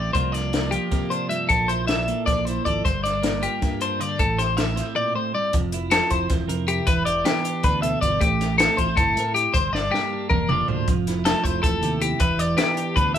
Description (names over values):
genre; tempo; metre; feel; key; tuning
math rock and midwest emo; 314 BPM (eighths); 7/8; straight; unclear; A4 = 444 Hz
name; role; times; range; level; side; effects
twelve-string electric guitar; accompaniment; 0.0-13.2 s; F2 to Bb4; -27 LUFS; right 4 dB; none
twelve-string electric guitar; arpeggios; 0.0-13.2 s; G4 to E5; -22 LUFS; left 3 dB; none
fingered electric bass; bass; 0.0-13.2 s; E1 to C3; -28 LUFS; right 1 dB; none
compact cocktail drum kit; drums; 0.1-13.2 s; hi-hat, kick drum, snare drum, toms; -25 LUFS; equal; none
room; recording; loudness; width
moderate studio reverb, RT60 0.5 s; band playing live in one room; -20 LUFS; side -9 dB against mid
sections
0.0-5.5 A section; 5.5-13.2 B section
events
drum fill 0.0, 9.7-10.9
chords
0.2 C9sus4; 1.5 Bbmaj9#11; 2.9 Gm7; 4.2 Am7; 5.5 Fmaj9; 6.9 Em7; 8.2 Am7; 9.5 Gm7; 10.9 Fmaj9; 12.2 Em7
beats
| 0.16 0.35 0.54 0.74 0.93 1.12 1.31 | 1.51 1.70 1.89 2.08 2.28 2.47 2.66 | 2.85 3.04 3.24 3.43 3.62 3.81 4.01 | 4.20 4.39 4.58 4.77 4.96 5.16 5.35 | 5.54 5.73 5.92 6.11 6.30 6.50 6.69 | 6.88 7.07 7.26 7.45 7.64 7.83 8.02 | 8.21 8.40 8.59 8.78 8.97 9.16 9.36 | 9.55 9.74 9.93 10.12 10.31 10.50 10.69 | 10.88 11.07 11.26 11.45 11.64 11.83 12.02 | 12.21 12.40 12.59 12.78 12.97 13.16